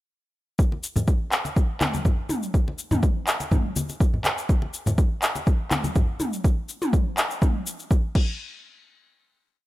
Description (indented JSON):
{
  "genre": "house",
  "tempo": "123 BPM",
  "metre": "4/4",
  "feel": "swing 54% on 16ths",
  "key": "none",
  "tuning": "none",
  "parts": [
    { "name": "deep house drum kit", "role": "drums", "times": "0.6-8.3 s", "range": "crash cymbal, handclaps, shaker, toms", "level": "-26 LUFS", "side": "equal", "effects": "none" },
    { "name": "electronic kick drum", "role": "drums", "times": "0.6-8.3 s", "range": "none", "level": "-21 LUFS", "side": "equal", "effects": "none" },
    { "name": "congas", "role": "percussion", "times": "0.7-6.3 s", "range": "none", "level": "-27 LUFS", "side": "left 1 dB", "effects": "none" }
  ],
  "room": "little or no reverb",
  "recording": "none",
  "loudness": "-21 LUFS",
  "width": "side -17 dB against mid",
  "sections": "0.6-8.4 groove; 8.4-9.7 final hit",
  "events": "none",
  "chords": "none"
}